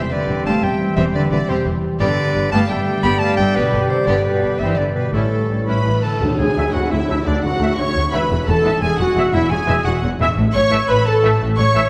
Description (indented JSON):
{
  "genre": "cinematic, heroic adventure film score",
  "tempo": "116 BPM (dotted quarters)",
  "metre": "6/8",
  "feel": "straight",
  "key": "D lydian from 6.2 s",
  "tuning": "A4 = 438 Hz",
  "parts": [
    { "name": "warm symphonic violin section", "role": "melody", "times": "0.0-11.9 s", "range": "A3 to C#6", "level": "-33 LUFS", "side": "equal", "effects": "none" },
    { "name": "silver concert flute", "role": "second line", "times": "0.0-11.9 s", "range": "E4 to C#6", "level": "-30 LUFS", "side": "equal", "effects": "none" },
    { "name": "warm symphonic violin section", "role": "second line", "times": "0.0-11.9 s", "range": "A4 to C#6", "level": "-34 LUFS", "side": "equal", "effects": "none" },
    { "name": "warm symphonic viola section", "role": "accompaniment", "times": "0.0-11.9 s", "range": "D3 to C#5", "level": "-29 LUFS", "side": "equal", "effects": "none" },
    { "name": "bright trombone section", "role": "sustained chords", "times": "0.0-11.8 s", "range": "D3 to A3", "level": "-31 LUFS", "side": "equal", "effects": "none" },
    { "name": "dark French horn section", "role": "sustained chords", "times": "0.0-11.9 s", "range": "A3 to C#5", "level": "-25 LUFS", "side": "equal", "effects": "none" },
    { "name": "concert harp", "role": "arpeggios", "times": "0.0-11.9 s", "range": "E2 to C#6", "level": "-29 LUFS", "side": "equal", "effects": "none" },
    { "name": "dark trumpet section", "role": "stabs", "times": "0.0-11.8 s", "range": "C4 to E5", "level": "-28 LUFS", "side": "equal", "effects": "none" },
    { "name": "warm symphonic cello section", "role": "bass", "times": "0.0-11.8 s", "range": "D2 to B3", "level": "-25 LUFS", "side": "equal", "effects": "none" },
    { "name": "clear clarinet", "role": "second line", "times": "0.1-5.7 s", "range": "A4 to B5", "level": "-26 LUFS", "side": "equal", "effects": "none" },
    { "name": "rich studio double bass section", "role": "bass", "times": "0.3-11.8 s", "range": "E1 to D2", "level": "-25 LUFS", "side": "equal", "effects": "none" },
    { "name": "cymbal swell and tam-tam", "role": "percussion", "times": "4.1-7.6 s", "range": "none", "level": "-29 LUFS", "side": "equal", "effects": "none" },
    { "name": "warm oboe", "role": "second line", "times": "5.7-11.9 s", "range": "D4 to C#5", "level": "-31 LUFS", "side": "equal", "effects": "none" }
  ],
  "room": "wet scoring stage reverb, RT60 1.8 s",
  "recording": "none",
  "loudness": "-17 LUFS",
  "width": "mono",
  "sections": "0.0-6.2 A section; 6.2-11.9 B section",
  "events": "band accent 6.2-6.6",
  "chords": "0.0 C/E; 2.0 G; 5.1 A7; 6.2 Dadd9; 8.3 E; 10.4 A"
}